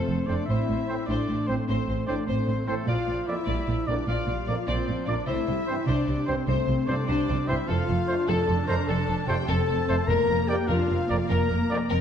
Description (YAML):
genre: cinematic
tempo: 100 BPM (dotted quarters)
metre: 12/8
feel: straight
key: unclear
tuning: A4 = 440 Hz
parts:
  - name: rich symphonic violin section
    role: melody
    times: 0.0-12.0 s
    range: A4 to D5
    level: -35 LUFS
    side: left 4 dB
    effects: none
  - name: bright oboe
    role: second line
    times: 0.0-11.9 s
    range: A4 to Bb5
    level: -37 LUFS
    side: equal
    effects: none
  - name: warm clarinet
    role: second line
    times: 0.0-11.9 s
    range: A3 to Bb4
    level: -36 LUFS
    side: left 1 dB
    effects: none
  - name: warm symphonic violin section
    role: second line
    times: 0.0-11.9 s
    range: A4 to Bb5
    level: -38 LUFS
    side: left 3 dB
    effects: none
  - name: dark symphonic viola section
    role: accompaniment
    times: 0.0-12.0 s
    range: E3 to D4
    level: -34 LUFS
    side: left 2 dB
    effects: none
  - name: mellow French horn section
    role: sustained chords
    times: 0.0-11.9 s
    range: A3 to Bb4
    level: -30 LUFS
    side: left 4 dB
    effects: none
  - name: warm studio cello section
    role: bass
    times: 0.1-12.0 s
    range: F2 to C3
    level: -30 LUFS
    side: right 2 dB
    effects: none
  - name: warm studio double bass section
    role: bass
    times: 0.1-12.0 s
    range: F1 to C2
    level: -29 LUFS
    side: right 2 dB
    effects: none
  - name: bright trombone section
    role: sustained chords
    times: 0.3-11.8 s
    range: F2 to C4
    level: -37 LUFS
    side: right 3 dB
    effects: none
  - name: clear trumpet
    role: stabs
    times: 0.3-11.8 s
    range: C5 to D5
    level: -35 LUFS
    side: right 2 dB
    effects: none
  - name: timpani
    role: percussion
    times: 10.1-10.6 s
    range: F2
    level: -32 LUFS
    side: equal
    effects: none
room: moderate scoring stage reverb, RT60 1.6 s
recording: dark, warm production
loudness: -23 LUFS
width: side -8 dB against mid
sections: 0.0-12.0 A section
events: none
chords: 0.5 Am; 2.9 Bb; 5.3 C; 7.7 F; 10.1 Bb/F